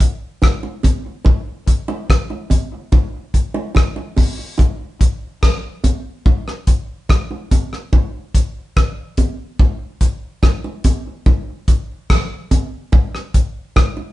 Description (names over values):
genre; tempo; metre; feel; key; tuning
reggae; 72 BPM; 4/4; straight; none; none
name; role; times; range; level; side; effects
damped 70s drum kit; drums; 0.0-14.0 s; hi-hat, kick drum, rim click; -14 LUFS; equal; none
bongos; percussion; 0.4-14.1 s; none; -26 LUFS; right 3 dB; tape echo
room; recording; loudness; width
moderate studio reverb, RT60 0.7 s; band playing live in one room, nothing above 10.6 kHz; -16 LUFS; side -16 dB against mid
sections
0.0-14.1 A section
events
none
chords
none